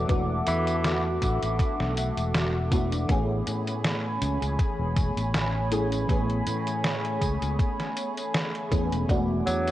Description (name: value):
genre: vaporwave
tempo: 80 BPM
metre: 4/4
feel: swing 55% on 16ths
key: A major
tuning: A4 = 441 Hz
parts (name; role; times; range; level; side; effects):
- FM electric piano with soft pad layer; accompaniment; 0.0-9.7 s; E3 to G#4; -30 LUFS; equal; phaser, ensemble chorus, analog delay
- warbly tape-like pad; sustained chords; 0.0-9.7 s; A3 to D6; -32 LUFS; equal; chorus, built-in reverb
- sustaining fretless electric bass; bass; 0.0-9.7 s; E1 to A2; -29 LUFS; equal; wide subtle chorus
- detuned 8-bit digital drum machine; drums; 0.1-9.7 s; hi-hat, snare drum, tambourine; -31 LUFS; equal; vintage 12-bit sampler grit
- electronic kick drum; drums; 0.1-9.3 s; none; -26 LUFS; equal; vintage 12-bit sampler grit
- warm tenor saxophone; melody; 0.5-1.1, 9.5-9.7 s; E3 to F#3; -32 LUFS; equal; tape echo
room: light reverb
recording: cassette tape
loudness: -24 LUFS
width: side -14 dB against mid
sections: 0.0-9.7 A section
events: none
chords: 0.0 E9sus4; 3.1 Amaj9; 9.1 E9sus4